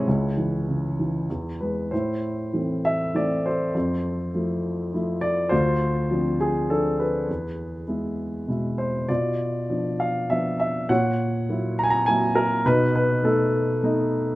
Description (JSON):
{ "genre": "classical, lyrical solo piano", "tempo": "101 BPM", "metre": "3/4", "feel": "rubato", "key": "A harmonic minor", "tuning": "A4 = 440 Hz", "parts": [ { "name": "dark baby grand piano", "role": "solo", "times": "0.0-14.4 s", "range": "C#2 to A#5", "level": "-22 LUFS", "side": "equal", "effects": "none" } ], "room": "little or no reverb", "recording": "close, detailed microphones, lossy compression artefacts", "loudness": "-22 LUFS", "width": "side -18 dB against mid", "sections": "0.0-1.9 A section; 1.9-14.4 B section", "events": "none", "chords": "0.1 C#m; 1.3 E; 1.9 Am; 3.7 Fmaj7; 5.5 Dm7; 7.3 E; 9.1 Bdim; 10.9 F#7/A#; 12.7 B7" }